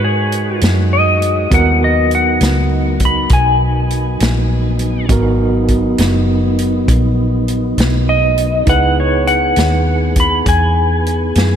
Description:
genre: slow blues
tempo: 67 BPM (dotted quarters)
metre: 12/8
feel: straight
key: G# minor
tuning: A4 = 440 Hz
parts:
  - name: clean lap steel guitar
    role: melody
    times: 0.0-11.6 s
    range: G#4 to B5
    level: -16 LUFS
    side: left 1 dB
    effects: wide subtle chorus, tape echo
  - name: overdriven tine electric piano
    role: accompaniment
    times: 0.0-11.6 s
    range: B3 to B4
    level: -21 LUFS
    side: right 5 dB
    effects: medium tremolo
  - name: mellow tonewheel organ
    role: sustained chords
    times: 0.0-11.6 s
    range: F#3 to G#4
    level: -20 LUFS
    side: left 1 dB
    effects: slow rotary speaker
  - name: vintage muted fingered electric bass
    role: bass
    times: 0.0-11.6 s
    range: F#1 to G#2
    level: -16 LUFS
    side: equal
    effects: none
  - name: vintage drum kit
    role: drums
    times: 0.3-11.5 s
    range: hi-hat, kick drum, snare drum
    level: -19 LUFS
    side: equal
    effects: none
room: moderate cathedral reverb, RT60 5.0 s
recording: dreamy mix soaked in reverb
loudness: -11 LUFS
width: side -8 dB against mid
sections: 0.0-11.6 A section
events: none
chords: 0.0 G#m7; 8.7 C#m7

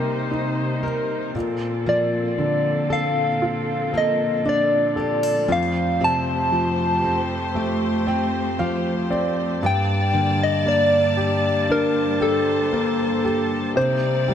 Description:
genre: pop ballad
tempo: 58 BPM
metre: 4/4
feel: straight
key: Bb major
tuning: A4 = 440 Hz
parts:
  - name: warm concert grand piano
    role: accompaniment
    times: 0.0-14.3 s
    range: F2 to G5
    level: -24 LUFS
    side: right 1 dB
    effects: none
  - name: rich studio string section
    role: sustained chords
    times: 0.0-14.3 s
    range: F2 to A5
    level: -28 LUFS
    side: right 1 dB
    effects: none
  - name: fingerpicked plugged-in steel-string acoustic guitar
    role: arpeggios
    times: 0.0-14.3 s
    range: G2 to Bb4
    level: -28 LUFS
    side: left 3 dB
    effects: ping-pong delay
  - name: soft struck synth lead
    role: melody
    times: 1.9-14.3 s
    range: A4 to A5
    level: -21 LUFS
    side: left 1 dB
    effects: chorus
room: moderate lush hall reverb, RT60 2.8 s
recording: none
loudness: -19 LUFS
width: side -9 dB against mid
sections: 0.0-14.3 A section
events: grand piano fill 7.6-9.6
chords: 0.0 Cm7; 1.4 Bbmaj7; 5.5 Fadd9; 9.6 Gmadd9; 13.8 Cm7

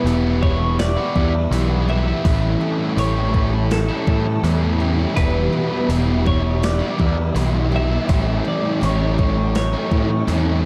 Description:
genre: rock, shoegaze and dream pop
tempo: 82 BPM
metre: 4/4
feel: straight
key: unclear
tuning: A4 = 439 Hz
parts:
  - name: string machine, violas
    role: sustained chords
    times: 0.0-10.7 s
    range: G4 to C#6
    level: -36 LUFS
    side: equal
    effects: none
  - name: picked twelve-string acoustic guitar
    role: arpeggios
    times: 0.0-10.7 s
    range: E3 to G4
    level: -30 LUFS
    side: equal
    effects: none
  - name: overdriven electric guitar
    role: riff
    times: 0.0-10.7 s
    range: E2 to E4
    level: -27 LUFS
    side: equal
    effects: reverse reverb
  - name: overdriven semi-hollow guitar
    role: riff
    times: 0.0-10.7 s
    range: E2 to E4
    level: -28 LUFS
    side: equal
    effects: analog chorus
  - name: growling picked electric bass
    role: bass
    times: 0.0-10.7 s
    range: E1 to A2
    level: -22 LUFS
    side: equal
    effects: overdrive
  - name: gated 80s digital drum machine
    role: drums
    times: 0.1-10.4 s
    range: hi-hat, kick drum, snare drum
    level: -24 LUFS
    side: equal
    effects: gated reverb, gated reverb snare, overdrive
  - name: twelve-string electric guitar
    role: melody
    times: 0.4-10.2 s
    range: A4 to E5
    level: -29 LUFS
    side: equal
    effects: spring reverb, analog delay
room: digital ambience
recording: dark, warm production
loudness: -19 LUFS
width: mono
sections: 0.0-10.7 A section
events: none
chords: 0.0 Em7; 2.2 A7; 5.2 Em7; 8.1 A7

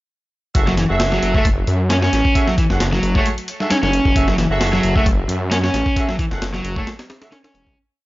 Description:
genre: breakbeat, breaks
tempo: 133 BPM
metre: 4/4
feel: swing 54% on 16ths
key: F# minor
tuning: A4 = 440 Hz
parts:
  - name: warm horn section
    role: stabs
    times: 0.5-7.3 s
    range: F#4 to F#5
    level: -24 LUFS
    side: right 2 dB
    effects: tape echo
  - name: breakbeat sampler-style drum kit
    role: drums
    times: 0.5-7.8 s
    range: hi-hat, kick drum, snare drum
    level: -20 LUFS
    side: equal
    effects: none
  - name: detuned saw bass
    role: bass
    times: 0.6-7.7 s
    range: E1 to F#2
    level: -20 LUFS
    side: equal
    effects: tube saturation
  - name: crunchy overdriven guitar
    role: riff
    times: 0.7-7.8 s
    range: E3 to C#4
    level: -20 LUFS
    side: equal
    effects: tube saturation, vintage 12-bit sampler grit, tape echo
room: little or no reverb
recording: dry, gritty hardware recording, transformer saturation, cassette tape, nothing above 7.5 kHz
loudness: -15 LUFS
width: side -18 dB against mid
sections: 0.6-7.8 drop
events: drop 0.6-7.8; fade-out 5.4-7.8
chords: 0.6 F#m9

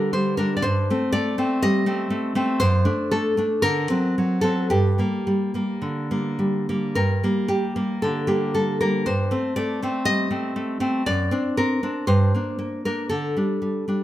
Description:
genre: romantic piece for solo classical guitar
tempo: 51-62 BPM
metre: 2/4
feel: rubato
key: G minor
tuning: A4 = 440 Hz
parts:
  - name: nylon-string guitar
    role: solo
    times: 0.0-14.0 s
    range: F#2 to Eb5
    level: -20 LUFS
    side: equal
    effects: none
room: light reverb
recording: none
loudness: -20 LUFS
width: side -13 dB against mid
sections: 0.0-7.0 A section; 7.0-14.0 B section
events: none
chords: 0.0 G5; 0.7 Am7b5/G; 2.6 D7/F#; 3.7 D7; 4.7 Gm; 9.1 Am7b5/G; 11.0 D7/F#; 12.1 Gm; 13.1 Dsus4

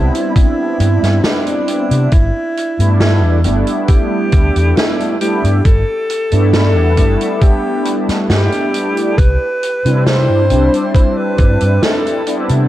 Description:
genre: vaporwave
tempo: 68 BPM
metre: 4/4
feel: straight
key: G major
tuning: A4 = 443 Hz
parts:
  - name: breathy alto saxophone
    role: melody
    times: 0.0-12.4 s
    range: D4 to C5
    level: -18 LUFS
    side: equal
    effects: tape echo
  - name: mellow synth brass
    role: accompaniment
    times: 0.0-12.7 s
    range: G3 to E4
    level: -17 LUFS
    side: equal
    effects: analog chorus, cassette tape
  - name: fingered electric bass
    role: bass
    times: 0.0-12.7 s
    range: G1 to C3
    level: -13 LUFS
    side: equal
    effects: none
  - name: vintage drum kit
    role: drums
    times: 0.1-12.7 s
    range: hi-hat, snare drum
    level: -20 LUFS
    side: equal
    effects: gated reverb
  - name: electronic kick drum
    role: drums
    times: 0.4-11.6 s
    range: none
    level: -10 LUFS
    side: equal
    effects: none
room: light reverb, studio ambience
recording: cassette tape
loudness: -11 LUFS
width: side -14 dB against mid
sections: 0.0-12.7 A section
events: none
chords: 0.0 Cmaj9; 2.1 G69; 9.2 Cmaj9

